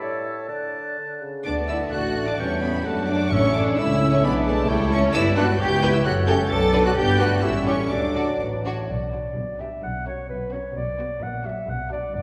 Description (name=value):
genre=quick classical-period movement for symphony orchestra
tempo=129 BPM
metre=2/4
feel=rubato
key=D major, B minor from 8.9 s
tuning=A4 = 441 Hz
part: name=clear oboe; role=second line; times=0.0-8.7 s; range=C#5 to A5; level=-34 LUFS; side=equal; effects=none
part: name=mellow clarinet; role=second line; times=0.0-12.2 s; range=A4 to F#5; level=-34 LUFS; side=equal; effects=none
part: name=mellow hollow flute section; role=second line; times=0.0-8.4 s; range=G4 to F#6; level=-32 LUFS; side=equal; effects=none
part: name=warm bassoon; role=accompaniment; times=0.0-8.7 s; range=A2 to A3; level=-33 LUFS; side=equal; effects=none
part: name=rich studio violin section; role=second line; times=1.4-12.1 s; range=A3 to B4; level=-33 LUFS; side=equal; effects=none
part: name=rich studio violin section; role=melody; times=1.5-12.1 s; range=A#4 to A6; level=-33 LUFS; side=equal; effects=none
part: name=rich studio viola section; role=accompaniment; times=1.5-12.1 s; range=F#3 to A4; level=-31 LUFS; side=equal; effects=none
part: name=warm French horn section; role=sustained chords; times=1.5-8.7 s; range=F#3 to E4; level=-30 LUFS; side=equal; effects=none
part: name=rich studio cello section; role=bass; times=1.5-12.2 s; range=F#2 to A4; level=-33 LUFS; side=equal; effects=none
part: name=rich studio double bass section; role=bass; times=1.5-12.2 s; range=F#1 to F#2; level=-28 LUFS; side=equal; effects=none
part: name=timpani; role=percussion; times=3.3-4.0 s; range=A2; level=-31 LUFS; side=equal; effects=none
room=wet scoring stage reverb, RT60 1.8 s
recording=heard from further back in the room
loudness=-23 LUFS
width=mono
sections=0.0-1.5 A section; 1.5-8.9 A section; 8.9-12.2 B section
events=none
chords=0.0 A; 0.5 D; 2.4 C#dim/E; 2.9 D/F#; 3.3 A; 4.2 G#dim/B; 4.7 A/C#; 5.1 G; 5.6 C#m7b5; 6.1 F#m; 6.5 Bm7; 7.0 G; 7.4 A7; 7.9 D; 8.9 Bm; 9.8 F#/B; 10.8 Bm; 11.2 F#/A#; 11.7 Bm